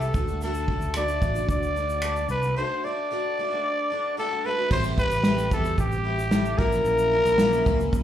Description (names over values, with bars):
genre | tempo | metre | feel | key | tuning
acoustic pop | 112 BPM | 4/4 | straight | unclear | A4 = 440 Hz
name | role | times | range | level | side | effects
growling trumpet | melody | 0.0-8.0 s | G4 to D5 | -25 LUFS | left 1 dB | plate reverb, slapback echo
picked twelve-string acoustic guitar | accompaniment | 0.0-8.0 s | A2 to G4 | -31 LUFS | equal | double-tracked left and right, plate reverb, slapback echo
fingered electric bass | bass | 0.0-8.0 s | A1 to E2 | -28 LUFS | right 1 dB | none
natural country drum kit | drums | 0.0-8.0 s | crash cymbal, finger snaps, kick drum, shaker, snare drum | -26 LUFS | equal | none
room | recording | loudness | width
moderate club ambience, RT60 0.5 s | live gig heard through the venue's PA, club reverb | -22 LUFS | side -10 dB against mid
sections
0.0-4.7 A section; 4.7-8.0 B section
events
none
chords
0.1 D; 4.7 Am7; 6.6 F#7/A#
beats
| 0.41 0.95 1.49 2.02 | 2.56 3.10 3.64 4.17 | 4.71 5.25 5.78 6.32 | 6.86 7.39 7.93